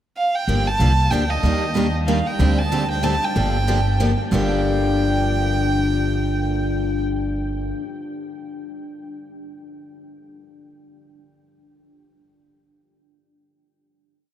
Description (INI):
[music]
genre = acoustic string swing (jazz manouche)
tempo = 187 BPM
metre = 3/4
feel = swing 60% on 8ths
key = G minor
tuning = A4 = 440 Hz
[part]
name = rich violin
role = melody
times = 0.2-7.0 s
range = Eb5 to A5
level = -24 LUFS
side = right 2 dB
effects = none
[part]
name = picked steel-string acoustic guitar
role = accompaniment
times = 0.5-7.8 s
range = G2 to G4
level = -25 LUFS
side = left 4 dB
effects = none
[part]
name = picked steel-string acoustic guitar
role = accompaniment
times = 0.5-7.8 s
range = G2 to G4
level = -27 LUFS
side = right 5 dB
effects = none
[part]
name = upright bass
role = bass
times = 0.5-7.7 s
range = G1 to Eb2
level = -21 LUFS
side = equal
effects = none
[sound]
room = wet huge ambient reverb, RT60 8.1 s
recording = in a vast, echoing space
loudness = -18 LUFS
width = side -11 dB against mid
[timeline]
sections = 0.0-0.5 pickup bar; 0.5-4.3 A section; 4.3-6.2 final chord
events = none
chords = 0.5 Gm7; 1.4 Ebmaj7; 2.4 D7sus4; 3.4 Gm7